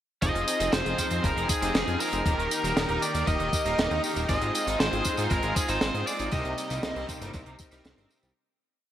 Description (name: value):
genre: synthwave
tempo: 118 BPM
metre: 4/4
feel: straight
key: F minor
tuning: A4 = 439 Hz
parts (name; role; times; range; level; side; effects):
- biting lead guitar; melody; 0.2-7.0 s; Ab4 to Eb5; -30 LUFS; equal; overdrive, digital delay, shimmer reverb
- soft supersaw; sustained chords; 0.2-8.3 s; C3 to Bb4; -34 LUFS; equal; vintage 12-bit sampler grit, sidechain pumping, shimmer reverb
- cranked stack guitar; riff; 0.2-8.3 s; C3 to Ab4; -36 LUFS; right 2 dB; overdrive, ensemble chorus, digital delay, shimmer reverb
- analog synth brass; stabs; 0.2-8.3 s; Bb3 to Bb4; -34 LUFS; equal; chorus, shimmer reverb
- fat analog bass; bass; 0.2-8.3 s; Eb1 to Ab2; -32 LUFS; equal; tube saturation
- deep reggae drum kit; drums; 0.2-8.3 s; hi-hat, snare drum, tambourine; -31 LUFS; right 1 dB; gated reverb
- electronic kick drum; drums; 0.2-7.7 s; none; -30 LUFS; equal; none
room: moderate lush hall reverb, RT60 2.0 s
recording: bright 1980s-style digital production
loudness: -24 LUFS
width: side -11 dB against mid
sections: 0.2-8.4 chorus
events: fade-out 5.6-8.4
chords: 0.2 Fm7; 2.3 Eb; 4.3 Ab6; 6.3 Cm7